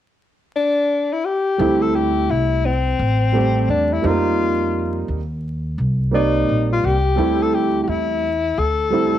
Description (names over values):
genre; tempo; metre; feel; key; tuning
hip hop; 86 BPM; 4/4; swing 63% on 16ths; D minor; A4 = 435 Hz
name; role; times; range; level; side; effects
breathy alto saxophone; melody; 0.6-9.2 s; C4 to A4; -19 LUFS; left 4 dB; cassette tape, plate reverb
dark upright piano; accompaniment; 1.6-9.2 s; G3 to D5; -20 LUFS; right 6 dB; cassette tape, plate reverb
upright bass; bass; 1.6-9.2 s; A1 to F2; -22 LUFS; equal; none
room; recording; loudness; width
moderate studio reverb, RT60 0.5 s; home recording on cassette, vinyl crackle; -17 LUFS; side -11 dB against mid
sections
0.0-1.6 A section; 1.6-9.2 B section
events
none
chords
0.0 N.C.; 1.6 D9sus4; 4.0 F9sus4; 7.2 D9sus4